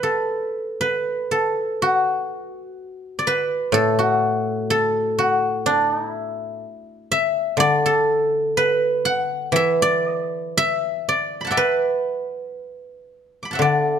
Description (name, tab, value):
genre	chinese traditional, Chinese solo plucked strings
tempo	56-63 BPM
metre	4/4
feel	rubato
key	D gong mode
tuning	A4 = 440 Hz
part	guzheng	solo	0.0-14.0 s	A2 to D6	-19 LUFS	equal	none
room	light reverb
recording	close, detailed microphones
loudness	-18 LUFS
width	side -8 dB against mid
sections	0.0-14.0 A section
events	none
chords	none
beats	0.79 1.79 2.77 | 3.73 4.69 5.65 6.62 | 7.59 8.56 9.54 10.55 | 11.57 12.58 13.61